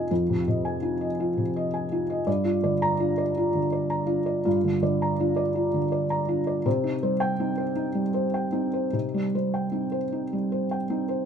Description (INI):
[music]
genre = neoclassical minimalist piano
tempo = 54 BPM (dotted quarters)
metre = 6/8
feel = uneven beats, rubato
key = unclear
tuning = A4 = 440 Hz
[part]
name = felt-muted upright piano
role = solo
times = 0.0-11.3 s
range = F2 to Bb5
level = -23 LUFS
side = equal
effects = none
[sound]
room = light reverb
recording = minimal, uncompressed stereo recording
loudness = -23 LUFS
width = side -7 dB against mid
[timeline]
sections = 0.0-11.3 A section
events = none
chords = 0.0 Fm7; 2.3 Gm7; 6.7 Cm